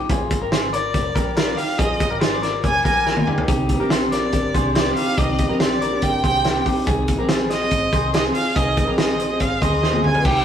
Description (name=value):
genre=jangly indie pop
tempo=142 BPM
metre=4/4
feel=straight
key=unclear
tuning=A4 = 440 Hz
part: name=clean electric guitar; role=arpeggios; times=0.0-10.4 s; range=Eb4 to Eb5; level=-24 LUFS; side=left 2 dB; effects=none
part: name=vintage muted picked electric bass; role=bass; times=0.1-10.4 s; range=F1 to Eb2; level=-28 LUFS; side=equal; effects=none
part: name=loose indie drum kit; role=drums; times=0.1-10.3 s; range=crash cymbal, hi-hat, kick drum, snare drum, toms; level=-21 LUFS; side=equal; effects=none
part: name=rich violin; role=melody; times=0.7-10.4 s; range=D5 to Ab5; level=-23 LUFS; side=right 1 dB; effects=none
part: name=picked steel-string acoustic guitar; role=accompaniment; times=3.5-10.4 s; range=Eb3 to Ab4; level=-24 LUFS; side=equal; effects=none
room=moderate stone room reverb, RT60 1.3 s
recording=rough rehearsal-room recording, vinyl crackle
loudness=-17 LUFS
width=side -9 dB against mid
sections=0.0-10.2 A section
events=drum fill 3.1-3.5, 9.8-10.2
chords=0.1 Bb7; 3.5 Cmadd9; 6.9 Ab